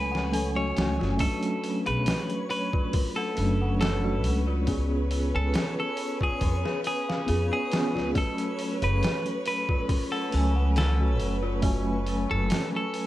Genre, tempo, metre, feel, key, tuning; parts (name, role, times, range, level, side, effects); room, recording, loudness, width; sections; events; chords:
trip hop; 69 BPM; 4/4; swing 53% on 16ths; F# harmonic minor; A4 = 440 Hz
clean electric guitar; melody; 0.0-13.1 s; G#4 to C#5; -32 LUFS; equal; tape echo
mellow tine electric piano; accompaniment; 0.0-13.1 s; F#3 to G#5; -30 LUFS; equal; medium stereo tremolo, tape echo
warm studio violin section; sustained chords; 0.0-13.1 s; B4 to G#5; -38 LUFS; equal; vintage 12-bit sampler grit
dark detuned synth bell; arpeggios; 0.0-13.1 s; C#4 to G#5; -37 LUFS; left 4 dB; chorus, vintage 12-bit sampler grit, tape echo
upright bass; bass; 0.0-12.5 s; F#1 to E#2; -27 LUFS; equal
backwards swelling texture; texture; 0.0-13.1 s; C#5; -40 LUFS; right 1 dB; built-in reverb
trip hop sampler-style drum kit; drums; 0.1-13.1 s; hi-hat, kick drum, snare drum; -30 LUFS; equal; small room ambience
light reverb; vinyl crackle; -24 LUFS; side -15 dB against mid
0.0-13.1 A section
0.0 F#madd9; 1.2 Bm7; 4.7 C#7; 8.2 F#madd9